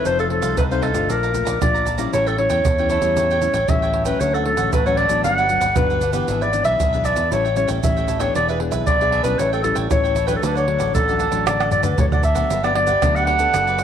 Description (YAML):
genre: samba and choro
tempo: 116 BPM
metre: 4/4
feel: straight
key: D major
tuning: A4 = 440 Hz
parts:
  - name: warm clarinet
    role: melody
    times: 0.0-13.8 s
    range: A4 to F#5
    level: -19 LUFS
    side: equal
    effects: slapback echo
  - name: cavaquinho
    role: accompaniment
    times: 0.0-13.8 s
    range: D4 to Bb5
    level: -29 LUFS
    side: right 10 dB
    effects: none
  - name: nylon-string guitar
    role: accompaniment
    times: 0.0-13.8 s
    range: G2 to A4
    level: -26 LUFS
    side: left 8 dB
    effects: none
  - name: fingered electric bass with an envelope filter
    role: bass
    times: 0.1-13.8 s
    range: E1 to E2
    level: -25 LUFS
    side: equal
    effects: none
  - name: tube shaker, surdo, pandeiro and tamborim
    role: percussion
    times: 0.1-13.8 s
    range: none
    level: -23 LUFS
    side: right 2 dB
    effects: none
room: moderate plate reverb, RT60 3.9 s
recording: 1960s-style stereo with parts hard left and right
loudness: -16 LUFS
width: side -9 dB against mid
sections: 0.0-12.5 A section; 12.5-13.8 B section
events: drum fill 11.5-12.5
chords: 0.1 F7; 1.1 Bbmaj7; 2.1 A7; 4.2 Dmaj7; 5.2 Gmaj7; 6.3 E7/G#; 7.3 A7; 8.4 E7; 9.4 A7; 10.4 D; 12.5 Gmaj7